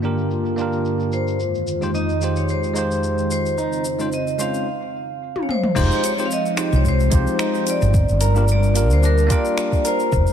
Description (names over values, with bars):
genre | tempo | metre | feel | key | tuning
sunset chillout | 110 BPM | 4/4 | swing 54% on 16ths | F minor | A4 = 440 Hz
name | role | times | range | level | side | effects
bell-like tine electric piano | accompaniment | 0.0-10.1 s | Ab3 to C5 | -26 LUFS | equal | auto-pan, low-pass filter, ping-pong delay
airy breathy pad | sustained chords | 0.0-10.3 s | F2 to C5 | -24 LUFS | equal | chorus
deep house drum kit | drums | 0.0-10.3 s | crash cymbal, finger snaps, hi-hat, shaker, toms | -27 LUFS | left 1 dB | low-pass filter on hats, low-pass filter on perc, low-pass filter on snare, low-pass filter on toms, low-pass filter on cymbals, low-pass filter on room
vibraphone with hard mallets | melody | 1.1-10.3 s | Bb4 to F5 | -24 LUFS | left 1 dB | ping-pong delay
electric guitar through a small old amp | arpeggios | 1.9-10.1 s | D4 to C5 | -29 LUFS | right 2 dB | spring reverb, ping-pong delay
woody fretless electric bass | bass | 5.8-10.2 s | F1 to D2 | -16 LUFS | equal | wide subtle chorus
electronic kick drum | drums | 5.8-10.2 s | none | -20 LUFS | equal | none
room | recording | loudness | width
light reverb, digital ambience | none | -17 LUFS | side -9 dB against mid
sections
0.0-5.8 A section; 5.8-10.3 B section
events
filter sweep on drum 0.0-5.8; filter sweep on analog synth pad 0.0-5.8; drum fill 5.4-5.8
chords
0.0 Gm7; 1.4 Fm7; 3.6 Dbmaj9; 5.8 Fm7; 7.9 Gm7